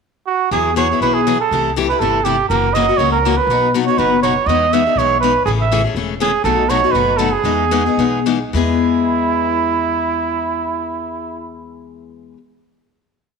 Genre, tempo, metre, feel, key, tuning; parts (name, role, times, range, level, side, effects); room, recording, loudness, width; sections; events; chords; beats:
acoustic string swing (jazz manouche); 206-244 BPM; 4/4; swing 56% on 8ths; E major; A4 = 440 Hz
clear flugelhorn; melody; 0.3-11.6 s; E4 to E5; -16 LUFS; right 6 dB
picked steel-string acoustic guitar; accompaniment; 0.5-12.4 s; B2 to G#4; -19 LUFS; left 10 dB
upright bass; bass; 0.5-12.3 s; E1 to E2; -23 LUFS; left 1 dB
wet echo chamber reverb, RT60 1.5 s, studio reverb; 1960s-style stereo with parts hard left and right; -14 LUFS; side -5 dB against mid
0.0-0.5 pickup bar; 0.5-8.5 A section; 8.5-10.9 final chord
slowing down 6.4-8.5
0.0 N.C.; 0.5 Eadd9; 1.5 C6; 2.5 F#7; 3.5 B; 4.5 Emaj7; 5.5 Amaj7; 6.4 B7; 7.4 Emaj7; 8.5 E
0.03 0.27 | 0.52 0.77 1.01 1.26 | 1.51 1.75 2.00 2.25 | 2.49 2.74 2.99 3.23 | 3.48 3.73 3.97 4.22 | 4.46 4.71 4.96 5.21 | 5.45 5.70 5.95 6.19 | 6.44 6.69 6.94 7.19 | 7.45 7.71 7.98 8.26 | 8.54 8.83 9.12 9.41 | 9.70 9.99 10.29 10.58